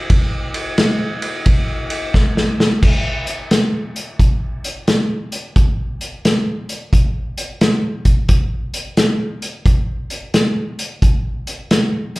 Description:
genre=blues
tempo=88 BPM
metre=4/4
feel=swing 65% on 8ths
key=none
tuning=none
part: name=vintage drum kit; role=drums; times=0.1-12.2 s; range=crash cymbal, hi-hat, kick drum, ride cymbal, snare drum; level=-15 LUFS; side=equal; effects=none
room=moderate club reverb, RT60 0.7 s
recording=live gig heard through the venue's PA, club reverb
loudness=-15 LUFS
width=side -22 dB against mid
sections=0.0-2.8 A section; 2.8-12.2 B section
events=drum fill 2.1-2.8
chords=none

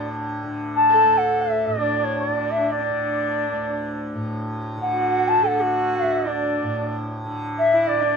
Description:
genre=indian classical, Hindustani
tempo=free time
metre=none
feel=none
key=D raga hamsadhwani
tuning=A4 = 441 Hz
part: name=reedy bansuri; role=melody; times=0.0-8.2 s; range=C#5 to A5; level=-20 LUFS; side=left 1 dB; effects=none
part: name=warm sarangi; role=second line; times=0.0-8.2 s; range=D4 to A4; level=-28 LUFS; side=right 4 dB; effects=none
part: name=tanpura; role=drone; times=0.0-8.2 s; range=D2 to D3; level=-28 LUFS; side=equal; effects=none
room=light reverb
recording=minimal, uncompressed stereo recording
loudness=-19 LUFS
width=side -5 dB against mid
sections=0.0-8.2 A section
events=none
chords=none

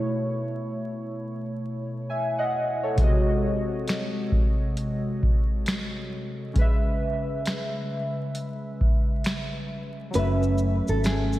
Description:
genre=lo-fi hip hop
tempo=67 BPM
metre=4/4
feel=swing 64% on 16ths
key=C# minor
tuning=A4 = 440 Hz
part: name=warbly lo-fi synth keys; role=accompaniment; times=0.0-11.4 s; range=B2 to G#5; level=-27 LUFS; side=equal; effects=chorus, phaser
part: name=booming analog drum machine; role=drums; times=3.0-11.4 s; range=finger snaps, hi-hat, kick drum, shaker, snare drum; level=-24 LUFS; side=equal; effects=none
part: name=nylon-string guitar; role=melody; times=10.2-11.4 s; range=G#4 to B4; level=-29 LUFS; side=left 1 dB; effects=none
part: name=vintage muted fingered electric bass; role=bass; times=10.2-11.4 s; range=F#1 to G#1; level=-24 LUFS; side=equal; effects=none
room=moderate lush hall reverb, RT60 2.6 s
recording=dreamy mix soaked in reverb, vinyl crackle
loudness=-24 LUFS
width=side -15 dB against mid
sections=0.0-10.1 A section; 10.1-11.4 B section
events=kick muted 10.1-11.4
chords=0.0 B9sus4; 3.0 G#7/B#; 6.6 C#m7; 10.1 F#m7

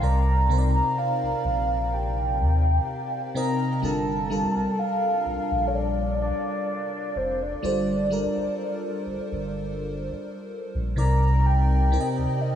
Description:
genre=contemporary R&B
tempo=63 BPM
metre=4/4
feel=swing 54% on 16ths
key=G minor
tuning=A4 = 440 Hz
part: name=soft octave-layered synth lead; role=melody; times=0.0-12.6 s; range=C5 to Bb5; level=-27 LUFS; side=equal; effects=chorus, phaser, analog delay
part: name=FM electric piano with soft pad layer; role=accompaniment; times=0.0-12.6 s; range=C3 to F5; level=-28 LUFS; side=equal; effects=chorus, phaser
part: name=warm sub bass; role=bass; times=0.0-12.3 s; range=F1 to Eb2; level=-24 LUFS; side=equal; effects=none
room=moderate huge ambient reverb, RT60 8.5 s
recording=dreamy mix soaked in reverb, small room ambience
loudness=-22 LUFS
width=side -9 dB against mid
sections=0.0-3.8 A section; 3.8-12.6 B section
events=none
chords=0.0 Cm9; 3.8 Gm9; 11.0 Cm9

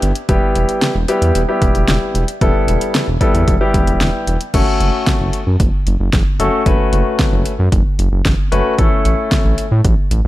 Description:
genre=synth-pop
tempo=113 BPM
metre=4/4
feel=straight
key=unclear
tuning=A4 = 440 Hz
part: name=warm concert grand piano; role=accompaniment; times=0.0-9.6 s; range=G3 to B4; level=-17 LUFS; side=left 2 dB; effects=none
part: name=smooth synth bass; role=bass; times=0.0-10.3 s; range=E1 to A2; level=-16 LUFS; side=equal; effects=none
part: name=deep house drum kit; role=drums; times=0.0-10.2 s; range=crash cymbal, hi-hat, kick drum, snare drum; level=-16 LUFS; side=equal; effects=overdrive
room=light reverb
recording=dark, warm production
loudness=-12 LUFS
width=side -16 dB against mid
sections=0.0-4.5 A section; 4.5-10.3 B section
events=none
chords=0.3 Em; 4.5 F#m; 8.8 A

